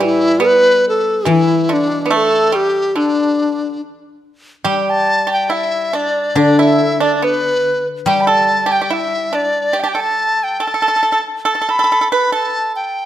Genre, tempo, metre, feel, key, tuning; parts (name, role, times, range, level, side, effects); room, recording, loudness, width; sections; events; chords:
chinese traditional, Chinese chamber ensemble; 71 BPM; 2/4; rubato; D zhi mode; A4 = 439 Hz
reedy large dizi; melody; 0.0-13.1 s; D4 to B5; -15 LUFS; left 1 dB
pipa; second line; 0.0-13.1 s; D3 to B4; -18 LUFS; right 4 dB
guzheng; accompaniment; 0.0-10.6 s; A2 to G3; -18 LUFS; left 2 dB
moderate scoring stage reverb, RT60 1.5 s; -13 LUFS; side -12 dB against mid
0.0-4.7 A section; 4.7-13.1 B section